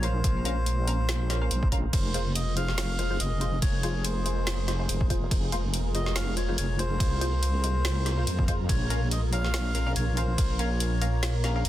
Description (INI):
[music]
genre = deep dubstep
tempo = 142 BPM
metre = 4/4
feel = swing 56% on 16ths, half-time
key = F minor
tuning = A4 = 442 Hz
[part]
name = melodica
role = melody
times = 0.0-11.4 s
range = C5 to F5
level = -35 LUFS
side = left 1 dB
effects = dub echo
[part]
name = deep dark ambient pad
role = sustained chords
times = 0.0-11.7 s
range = Ab3 to Bb4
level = -38 LUFS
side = equal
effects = chorus, built-in reverb
[part]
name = filtered dub chord stab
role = stabs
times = 0.0-11.6 s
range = Ab3 to F5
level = -36 LUFS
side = left 2 dB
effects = wide subtle chorus, dub echo
[part]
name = deep soft wobble bass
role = bass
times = 0.0-11.7 s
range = F1 to F2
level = -27 LUFS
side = equal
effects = chorus
[part]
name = deep house drum kit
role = drums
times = 0.0-11.7 s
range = hi-hat, ride cymbal, snare drum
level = -34 LUFS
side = equal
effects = soft clipping on snare
[part]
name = flickering grainy texture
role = texture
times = 0.1-11.7 s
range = Ab3 to C6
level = -40 LUFS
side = equal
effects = built-in reverb
[part]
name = electronic kick drum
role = drums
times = 0.2-10.5 s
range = none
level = -26 LUFS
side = equal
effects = none
[sound]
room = digital ambience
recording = dense, heavily limited modern master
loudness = -24 LUFS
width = side -13 dB against mid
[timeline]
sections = 0.0-11.7 A section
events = none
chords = 0.0 Bbm; 1.9 Fm; 8.7 Bbm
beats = | 0.24 0.66 1.09 1.51 | 1.93 2.35 2.78 3.20 | 3.62 4.04 4.47 4.89 | 5.31 5.74 6.16 6.58 | 7.00 7.42 7.85 8.27 | 8.69 9.12 9.54 9.96 | 10.38 10.80 11.23 11.65